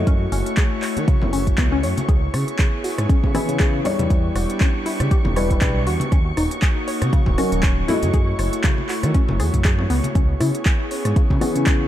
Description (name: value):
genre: deep house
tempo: 119 BPM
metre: 4/4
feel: swing 56% on 16ths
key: unclear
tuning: A4 = 440 Hz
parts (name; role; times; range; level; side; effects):
- airy breathy pad; sustained chords; 0.0-11.9 s; A3 to C#5; -28 LUFS; equal; chorus, vintage 12-bit sampler grit, sidechain pumping
- felt-muted upright piano; stabs; 0.0-11.9 s; E3 to D#5; -25 LUFS; left 2 dB; sidechain pumping, low-pass filter, tape echo
- smooth gliding synth bass; bass; 0.0-11.9 s; D#1 to D#3; -22 LUFS; equal; sidechain pumping
- soft string machine; texture; 0.0-11.9 s; C#6; -34 LUFS; right 1 dB; ensemble chorus, sidechain pumping
- analog pluck; arpeggios; 0.1-11.7 s; C#3 to C#5; -28 LUFS; left 3 dB; chorus, sidechain pumping, tape echo
- deep house drum kit; drums; 0.1-11.8 s; handclaps, hi-hat, rim click; -29 LUFS; equal; none
- electronic kick drum; drums; 0.1-11.8 s; none; -18 LUFS; equal; none
- congas; percussion; 1.2-11.4 s; none; -28 LUFS; left 2 dB; none
room: light reverb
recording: dark, warm production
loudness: -17 LUFS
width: side -12 dB against mid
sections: 0.0-11.9 A section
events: filter sweep on felt piano 0.0-11.9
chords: 0.0 F#m7; 2.1 C#m7; 3.9 Em7; 6.1 D#m7; 7.9 F#m7; 10.2 C#m7